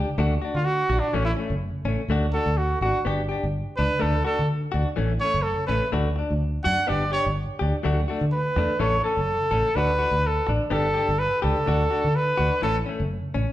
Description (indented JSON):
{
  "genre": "highlife guitar band",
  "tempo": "125 BPM",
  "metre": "4/4",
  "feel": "straight",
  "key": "D major",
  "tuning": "A4 = 444 Hz",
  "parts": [
    { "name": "direct-recorded clean electric guitar", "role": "accompaniment", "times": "0.0-13.5 s", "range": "E3 to A4", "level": "-28 LUFS", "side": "left 3 dB", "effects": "none" },
    { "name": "fingered electric bass", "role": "bass", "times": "0.0-13.4 s", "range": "F#1 to D3", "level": "-25 LUFS", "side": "equal", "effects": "none" },
    { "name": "clear trumpet", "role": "melody", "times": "0.5-12.8 s", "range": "C#4 to F#5", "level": "-24 LUFS", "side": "right 1 dB", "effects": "none" }
  ],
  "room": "wet large studio reverb, RT60 1.3 s",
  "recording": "band playing live in one room",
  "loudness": "-21 LUFS",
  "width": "side -14 dB against mid",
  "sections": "0.0-13.5 A section",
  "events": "trumpet solo 0.0-13.5",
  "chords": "0.2 D; 1.1 A; 2.1 D; 3.1 G; 4.0 D; 5.0 A; 5.9 D; 6.9 G; 7.9 D; 8.8 A; 9.8 D; 10.7 G; 11.7 D; 12.6 A"
}